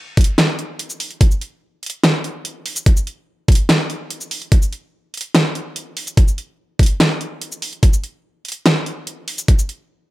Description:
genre	dubstep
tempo	145 BPM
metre	4/4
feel	half-time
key	none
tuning	none
part	dubstep drum kit	drums	0.2-9.8 s	hi-hat, shaker, snare drum	-18 LUFS	equal	overdrive
part	electronic kick drum	drums	0.2-9.6 s	none	-12 LUFS	equal	overdrive
room	little or no reverb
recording	none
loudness	-16 LUFS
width	side -17 dB against mid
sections	0.0-10.1 A section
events	none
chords	none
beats	0.38 0.79 | 1.21 1.62 2.04 2.45 | 2.86 3.28 3.69 4.10 | 4.52 4.93 5.35 5.76 | 6.17 6.59 7.00 7.42 | 7.83 8.24 8.66 9.07 | 9.48

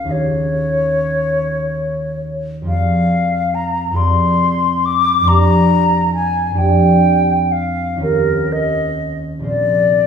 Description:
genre	classical, impressionist duo for flute and harp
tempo	38-47 BPM (dotted quarters)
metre	6/8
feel	rubato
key	F dorian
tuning	A4 = 440 Hz
part	mellow silver concert flute	melody	0.0-10.1 s	Bb4 to D6	-16 LUFS	left 2 dB	none
part	concert harp	accompaniment	0.0-10.1 s	Bb1 to D5	-17 LUFS	equal	none
room	wet recital hall reverb, RT60 1.3 s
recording	heard from further back in the room, studio reverb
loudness	-14 LUFS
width	side -7 dB against mid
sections	0.0-10.1 A section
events	none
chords	0.1 Eb9sus4; 2.7 Fm6; 5.3 C9sus4/F; 8.0 Eb9; 9.5 Bb9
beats	| 0.11 1.39 | 2.69 3.98 | 5.28 6.58 | 8.02 9.46

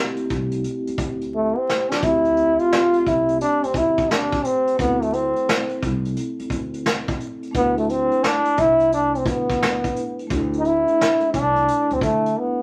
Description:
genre	hip hop, jazz-hop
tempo	87 BPM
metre	4/4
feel	swing 65% on 16ths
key	unclear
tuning	A4 = 436 Hz
part	vibraphone with soft mallets	accompaniment	0.0-12.6 s	A3 to E5	-30 LUFS	equal	none
part	vintage brush drum kit	drums	0.2-12.4 s	hi-hat, kick drum, snare drum	-27 LUFS	equal	none
part	upright bass	bass	0.3-12.3 s	C2 to D3	-33 LUFS	equal	none
part	warm trombone	melody	1.4-12.6 s	A3 to F4	-21 LUFS	equal	none
room	moderate studio reverb, RT60 0.5 s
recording	vinyl crackle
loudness	-21 LUFS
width	mono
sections	0.0-12.6 A section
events	trombone solo 0.0-12.6; drum fill 1.3-2.0; break 12.4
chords	0.0 D9sus4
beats	0.65 1.34 | 2.03 2.72 3.40 4.09 | 4.79 5.47 6.16 6.85 | 7.54 8.23 8.92 9.61 | 10.30 10.99 11.68 12.37

